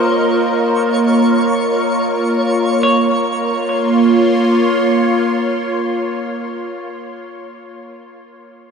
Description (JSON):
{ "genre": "ambient", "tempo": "free time", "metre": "none", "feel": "none", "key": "Bb minor", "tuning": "A4 = 440 Hz", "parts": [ { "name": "evolving wavetable pad", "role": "sustained chords", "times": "0.0-6.9 s", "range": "Bb3 to C6", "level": "-15 LUFS", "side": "right 1 dB", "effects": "phaser, built-in reverb" }, { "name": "semi-hollow electric guitar", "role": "arpeggios", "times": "0.0-6.6 s", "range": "C5 to Db5", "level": "-23 LUFS", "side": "equal", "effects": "analog delay" }, { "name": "twinkling granular texture", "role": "texture", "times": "0.0-2.8 s", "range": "Db5", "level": "-23 LUFS", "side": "left 1 dB", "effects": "built-in reverb" } ], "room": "wet huge ambient reverb, RT60 7.9 s", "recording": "dreamy mix soaked in reverb", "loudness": "-13 LUFS", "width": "side -6 dB against mid", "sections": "0.0-2.8 A section; 2.8-6.3 B section", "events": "none", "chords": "0.0 Bbm", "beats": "free time" }